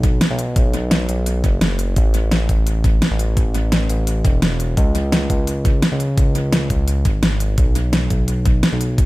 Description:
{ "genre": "liquid drum and bass", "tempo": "171 BPM", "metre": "4/4", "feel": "swing 54% on 16ths", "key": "unclear", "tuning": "A4 = 437 Hz", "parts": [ { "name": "smooth synth bass", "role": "bass", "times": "0.0-9.1 s", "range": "E1 to C#2", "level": "-19 LUFS", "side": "equal", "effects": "tube saturation" }, { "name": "electronic kick drum", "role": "drums", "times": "0.0-9.1 s", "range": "none", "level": "-17 LUFS", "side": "equal", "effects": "studio reverb" }, { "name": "pop drum kit", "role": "drums", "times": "0.0-9.1 s", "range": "hi-hat, snare drum", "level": "-20 LUFS", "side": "equal", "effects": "studio reverb, dub echo" } ], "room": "digital ambience", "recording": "echo-heavy mix", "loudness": "-15 LUFS", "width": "side -19 dB against mid", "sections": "0.0-9.1 A section", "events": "none", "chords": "none", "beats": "0.21 | 0.56 0.91 1.26 1.61 | 1.97 2.32 2.67 3.02 | 3.37 3.72 4.07 4.42 | 4.77 5.12 5.47 5.83 | 6.18 6.53 6.88 7.23 | 7.58 7.93 8.28 8.63 | 8.98" }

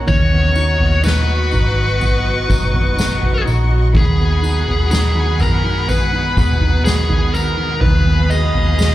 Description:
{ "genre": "pop ballad", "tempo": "62 BPM", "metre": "4/4", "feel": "straight", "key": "unclear", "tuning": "A4 = 440 Hz", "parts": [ { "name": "warm symphonic violin section", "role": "second line", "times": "0.0-8.9 s", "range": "F#4 to Db6", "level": "-25 LUFS", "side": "left 2 dB", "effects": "plate reverb, slapback echo" }, { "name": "felt-muted upright piano", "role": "accompaniment", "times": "0.0-8.9 s", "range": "D#3 to Ab4", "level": "-23 LUFS", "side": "right 3 dB", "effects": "slapback echo" }, { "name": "granular cloud pad", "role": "sustained chords", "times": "0.0-8.9 s", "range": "Eb3 to Gb4", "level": "-26 LUFS", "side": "equal", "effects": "built-in reverb" }, { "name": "vintage muted fingered electric bass", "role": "bass", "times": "0.0-8.9 s", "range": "F#1 to Gb2", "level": "-17 LUFS", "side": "equal", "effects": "none" }, { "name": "bluesy overdriven lead guitar", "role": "melody", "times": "0.1-8.9 s", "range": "Ab4 to Eb5", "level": "-20 LUFS", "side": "left 1 dB", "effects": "distortion, plate reverb, slapback echo" }, { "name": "soft-mallet drum kit", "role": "drums", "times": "0.1-8.9 s", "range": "kick drum, snare drum, toms", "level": "-19 LUFS", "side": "equal", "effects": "none" }, { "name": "tambourine", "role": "percussion", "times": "0.1-8.9 s", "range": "none", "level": "-32 LUFS", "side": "right 2 dB", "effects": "none" } ], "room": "light reverb", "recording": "live gig heard through the venue's PA, club reverb", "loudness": "-13 LUFS", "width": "side -14 dB against mid", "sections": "0.0-8.9 A section", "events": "none", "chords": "0.1 B; 3.9 Abm7/Eb; 7.8 Fm7b5", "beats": "| 0.08 1.04 2.01 2.98 | 3.95 4.92 5.88 6.85 | 7.82 8.79" }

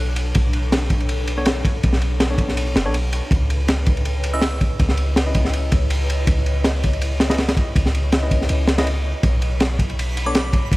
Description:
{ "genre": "drum and bass, jungle", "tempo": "162 BPM", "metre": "4/4", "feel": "swing 53% on 16ths", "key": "unclear", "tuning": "A4 = 440 Hz", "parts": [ { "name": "ethereal airy pad", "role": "sustained chords", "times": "0.0-10.8 s", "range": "D4 to D#5", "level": "-31 LUFS", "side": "left 1 dB", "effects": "ensemble chorus, built-in reverb, phaser" }, { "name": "warm 808-style bass", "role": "bass", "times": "0.0-10.8 s", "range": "F#1 to C#2", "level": "-21 LUFS", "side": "equal", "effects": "tube saturation" }, { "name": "crunchy breakbeat drum kit", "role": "drums", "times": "0.2-10.8 s", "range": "kick drum, ride cymbal, snare drum", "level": "-19 LUFS", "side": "equal", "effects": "none" }, { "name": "mellow tine electric piano", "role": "stabs", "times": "1.4-10.4 s", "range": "B3 to D#5", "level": "-29 LUFS", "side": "left 1 dB", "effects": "dub echo" }, { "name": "glassy synth bell", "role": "melody", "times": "4.3-4.6, 10.3-10.5 s", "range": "D6 to E6", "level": "-32 LUFS", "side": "right 1 dB", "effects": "chorus, dub echo" }, { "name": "twinkling granular texture", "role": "texture", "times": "9.6-10.8 s", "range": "B5", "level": "-36 LUFS", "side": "right 5 dB", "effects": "built-in reverb" } ], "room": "little or no reverb", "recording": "vinyl crackle", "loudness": "-17 LUFS", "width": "side -20 dB against mid", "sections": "0.0-10.8 A section", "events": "none", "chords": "0.0 Bm9; 3.3 C#m9; 9.2 Bm9", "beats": "| 0.35 0.72 1.09 1.46 | 1.83 2.20 2.57 2.94 | 3.31 3.68 4.05 4.42 | 4.79 5.17 5.54 5.91 | 6.28 6.65 7.02 7.39 | 7.76 8.13 8.50 8.87 | 9.24 9.61 9.98 10.35 | 10.72" }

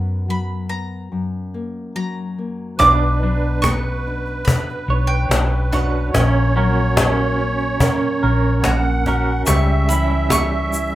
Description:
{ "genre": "acoustic folk duo or small band", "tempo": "72 BPM", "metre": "4/4", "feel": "straight", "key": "B harmonic minor", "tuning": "A4 = 440 Hz", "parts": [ { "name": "bowl-back mandolin", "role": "melody", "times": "0.0-10.9 s", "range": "F#5 to D6", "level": "-21 LUFS", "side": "right 2 dB", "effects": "none" }, { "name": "nylon-string guitar", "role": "accompaniment", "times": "0.0-10.9 s", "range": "F#2 to A#4", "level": "-26 LUFS", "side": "left 2 dB", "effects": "none" }, { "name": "hollow-body short-scale fingered electric bass", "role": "bass", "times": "0.0-10.9 s", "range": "A#1 to F#2", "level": "-19 LUFS", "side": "equal", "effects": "none" }, { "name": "musette accordion", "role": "second line", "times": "2.8-10.9 s", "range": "B4 to F#5", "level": "-24 LUFS", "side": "right 3 dB", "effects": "none" }, { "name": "electric guitar through a small old amp", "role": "arpeggios", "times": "2.8-10.9 s", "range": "G3 to C#5", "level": "-23 LUFS", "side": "right 3 dB", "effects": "tremolo" }, { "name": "cajon", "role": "percussion", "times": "2.8-10.9 s", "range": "none", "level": "-20 LUFS", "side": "left 1 dB", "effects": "none" }, { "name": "tube shaker", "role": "percussion", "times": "9.5-10.9 s", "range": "none", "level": "-26 LUFS", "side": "left 3 dB", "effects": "none" } ], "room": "moderate studio reverb, RT60 0.5 s", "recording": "rough home demo mix", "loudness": "-16 LUFS", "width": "side -14 dB against mid", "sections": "0.0-2.8 A section; 2.8-10.9 B section", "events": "none", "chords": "0.0 F#sus4; 1.1 F#; 2.8 Bmadd9; 6.1 F#/A#; 9.5 C#dim", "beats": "0.29 1.12 1.96 | 2.80 3.64 4.47 5.31 | 6.14 6.98 7.81 8.65 | 9.48 10.31" }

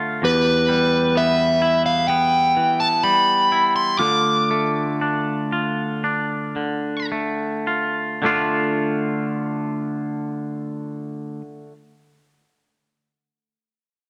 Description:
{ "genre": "rock", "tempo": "52-65 BPM", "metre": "4/4", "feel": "straight", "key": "D dorian", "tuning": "A4 = 440 Hz", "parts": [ { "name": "pedal steel guitar", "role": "sustained chords", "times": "0.0-11.4 s", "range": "D3 to G4", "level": "-28 LUFS", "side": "equal", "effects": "subtle chorus" }, { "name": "twangy electric guitar", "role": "arpeggios", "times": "0.0-11.8 s", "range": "E2 to F4", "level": "-26 LUFS", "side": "equal", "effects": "slapback echo" }, { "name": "overdriven electric guitar", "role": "melody", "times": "0.2-7.1 s", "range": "B4 to D6", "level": "-20 LUFS", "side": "equal", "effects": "slapback echo" } ], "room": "moderate echo chamber reverb, RT60 2.2 s", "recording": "none", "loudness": "-20 LUFS", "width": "mono", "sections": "0.0-8.2 A section; 8.2-12.8 B section", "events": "slowing down 0.2-8.2", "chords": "0.2 Em; 4.0 Dm", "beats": "| 0.23 1.15 2.08 3.03 | 4.00 5.00 6.04 7.11 | 8.23 9.38 10.53 11.68" }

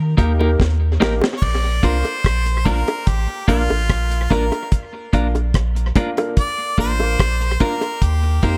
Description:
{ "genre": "roots reggae", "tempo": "73 BPM", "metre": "4/4", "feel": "straight", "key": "Bb major", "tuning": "A4 = 440 Hz", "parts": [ { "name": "warm sub bass", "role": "bass", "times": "0.0-8.6 s", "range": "A1 to Eb3", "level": "-21 LUFS", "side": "equal", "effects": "none" }, { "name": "clean electric guitar", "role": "accompaniment", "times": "0.2-8.6 s", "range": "Bb3 to Bb4", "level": "-27 LUFS", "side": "equal", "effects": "tape echo" }, { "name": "warm upright piano", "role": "stabs", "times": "0.2-8.6 s", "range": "Bb3 to Bb4", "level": "-29 LUFS", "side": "equal", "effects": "none" }, { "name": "deep reggae drum kit", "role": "drums", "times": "0.2-8.6 s", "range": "crash cymbal, hi-hat, kick drum, rim click, snare drum", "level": "-21 LUFS", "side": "equal", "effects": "tape echo" }, { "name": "bongos", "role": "percussion", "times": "0.4-8.0 s", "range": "none", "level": "-27 LUFS", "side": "equal", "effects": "none" }, { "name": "bright harmonica", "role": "melody", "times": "1.4-8.6 s", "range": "F4 to D5", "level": "-27 LUFS", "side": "equal", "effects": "tape echo" } ], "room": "light reverb, studio ambience", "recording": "none", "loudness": "-19 LUFS", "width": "mono", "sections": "0.0-1.4 A section; 1.4-8.6 B section", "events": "drum fill 0.6-1.4; harmonica solo 1.4-8.6", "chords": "0.0 Eb; 1.4 Bb; 8.0 Eb", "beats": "0.59 | 1.42 2.25 3.07 3.90 | 4.72 5.54 6.37 7.19 | 8.02" }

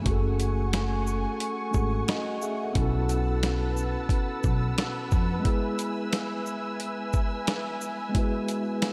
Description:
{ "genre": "hip hop, boom-bap hip-hop", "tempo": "89 BPM", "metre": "4/4", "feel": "swing 62% on 16ths", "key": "unclear", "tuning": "A4 = 440 Hz", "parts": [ { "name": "mellow tine electric piano", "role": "accompaniment", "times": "0.0-8.9 s", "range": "G#3 to F#5", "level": "-34 LUFS", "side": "equal", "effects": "high-pass filter, low-pass filter" }, { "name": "muted studio string section", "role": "sustained chords", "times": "0.0-8.9 s", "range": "A3 to E6", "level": "-36 LUFS", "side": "equal", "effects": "high-pass filter, low-pass filter" }, { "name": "upright bass", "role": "bass", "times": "0.1-5.4 s", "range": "F#1 to E#2", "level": "-31 LUFS", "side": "equal", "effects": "none" }, { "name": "dusty soul sampler-style drum kit", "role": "drums", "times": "0.1-8.9 s", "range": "hi-hat, kick drum, shaker, snare drum", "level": "-30 LUFS", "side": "equal", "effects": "none" } ], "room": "moderate lush hall reverb, RT60 3.0 s", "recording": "dreamy mix soaked in reverb", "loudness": "-28 LUFS", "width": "mono", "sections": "0.0-8.9 A section", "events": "none", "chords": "0.1 F#madd9; 2.8 B7sus4; 5.5 E", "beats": "| 0.06 0.73 1.41 2.08 | 2.76 3.43 4.10 4.78 | 5.45 6.13 6.80 7.47 | 8.15 8.82" }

